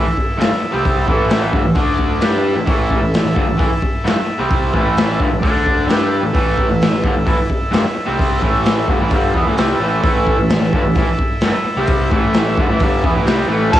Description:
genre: garage rock duo or trio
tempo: 130 BPM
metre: 4/4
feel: straight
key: unclear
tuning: A4 = 441 Hz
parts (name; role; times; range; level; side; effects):
- combo organ; sustained chords; 0.0-13.8 s; D4 to A5; -24 LUFS; equal; wide subtle chorus, cassette tape
- raw garage guitar; riff; 0.0-13.8 s; G2 to G4; -17 LUFS; equal; overdrive, cassette tape
- growling fingered electric bass; bass; 0.0-13.8 s; G1 to G2; -24 LUFS; equal; overdrive
- raw garage drum kit; drums; 0.2-13.8 s; crash cymbal, hi-hat, kick drum, snare drum; -18 LUFS; equal; cassette tape
- overdriven harmonica; melody; 13.7-13.8 s; A5; -12 LUFS; right 1 dB; cassette tape
room: moderate spring reverb, RT60 2.1 s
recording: home recording on cassette, small room ambience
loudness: -13 LUFS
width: side -12 dB against mid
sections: 0.0-13.7 A section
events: transistor combo organ fill 5.6-6.3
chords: 0.0 A5; 1.8 D5; 2.2 A5; 5.4 D5; 5.9 A5

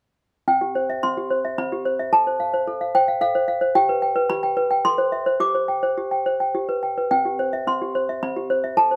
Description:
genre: classical, lullaby for toy piano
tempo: 109 BPM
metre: 3/4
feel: rubato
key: C major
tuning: A4 = 438 Hz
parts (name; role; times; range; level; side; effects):
- toy piano; solo; 0.5-9.0 s; C4 to D6; -22 LUFS; equal; none
room: light reverb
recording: close, detailed microphones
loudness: -22 LUFS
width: mono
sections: 0.5-9.0 A section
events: none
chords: 0.5 C; 2.1 F/A; 3.8 G; 4.8 Am; 5.4 Gsus4; 6.5 G; 7.1 C

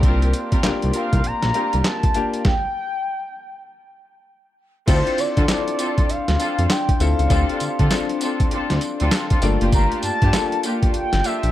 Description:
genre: R&B, new jack swing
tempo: 99 BPM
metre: 4/4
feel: swing 63% on 16ths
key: unclear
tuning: A4 = 438 Hz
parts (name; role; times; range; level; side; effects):
- clear concert grand piano; accompaniment; 0.0-11.5 s; A3 to A4; -27 LUFS; left 4 dB; none
- breathy mellow flute section; sustained chords; 0.0-11.5 s; D4 to C6; -29 LUFS; left 3 dB; none
- muted studio string section; stabs; 0.0-11.5 s; Bb3 to Bb4; -28 LUFS; equal; none
- smooth synth bass; bass; 0.0-11.5 s; F#1 to D3; -20 LUFS; equal; none
- boom bap sampler-style drum kit; drums; 0.0-11.5 s; crash cymbal, handclaps, hi-hat, kick drum, snare drum, tambourine; -20 LUFS; equal; none
- mellow horn-like synth lead; melody; 1.0-11.5 s; C5 to Bb5; -25 LUFS; left 1 dB; chorus, phaser
room: little or no reverb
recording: none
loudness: -17 LUFS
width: side -13 dB against mid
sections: 0.0-4.9 A section; 4.9-11.5 B section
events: stop 2.5-4.9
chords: 0.0 C7sus4; 4.9 Dm7; 9.4 Gm7

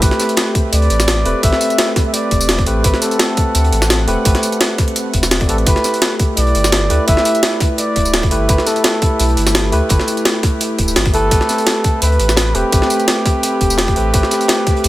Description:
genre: liquid drum and bass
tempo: 170 BPM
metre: 4/4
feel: swing 54% on 16ths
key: unclear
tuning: A4 = 440 Hz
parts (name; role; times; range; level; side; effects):
- mellow flugelhorn; melody; 0.0-14.9 s; G4 to E5; -20 LUFS; equal; dub echo
- tine electric piano; accompaniment; 0.0-14.9 s; A3 to D5; -20 LUFS; equal; dub echo
- lush unison pad; sustained chords; 0.0-14.9 s; A3 to F#5; -25 LUFS; equal; chorus
- warm sub bass; bass; 0.0-14.9 s; D1 to D2; -17 LUFS; equal; none
- crunchy breakbeat drum kit; drums; 0.0-14.9 s; hi-hat, snare drum; -24 LUFS; equal; high-pass filter on hats, studio reverb, high-pass filter on snare, high-pass filter on room
- electronic kick drum; drums; 0.0-14.7 s; none; -16 LUFS; equal; studio reverb
- jungle sampler-style drum kit; drums; 0.0-14.9 s; hi-hat, snare drum, tambourine; -18 LUFS; equal; studio reverb
room: little or no reverb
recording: none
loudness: -12 LUFS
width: side -16 dB against mid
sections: 0.0-14.9 A section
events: none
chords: 0.0 Am9; 5.7 G69; 11.3 Am9

